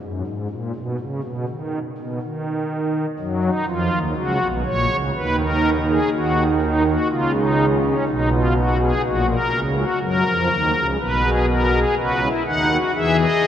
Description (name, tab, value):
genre	classical, baroque-style 3-part fugue for pipe organ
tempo	61 BPM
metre	4/4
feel	straight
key	B major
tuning	A4 = 438 Hz
part	pipe organ, strings celeste	solo	0.0-13.5 s	A#1 to F#5	-18 LUFS	equal	none
room	wet cathedral reverb, RT60 6.0 s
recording	none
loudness	-18 LUFS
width	side -10 dB against mid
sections	0.0-13.5 A section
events	none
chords	0.0 N.C.; 3.2 F#; 5.2 B/D# (rootless); 7.1 C#7; 9.1 F#/A#; 11.0 B; 13.0 E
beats	0.26 1.24 2.22 | 3.20 4.18 5.16 6.13 | 7.11 8.08 9.05 10.03 | 11.01 11.98 12.96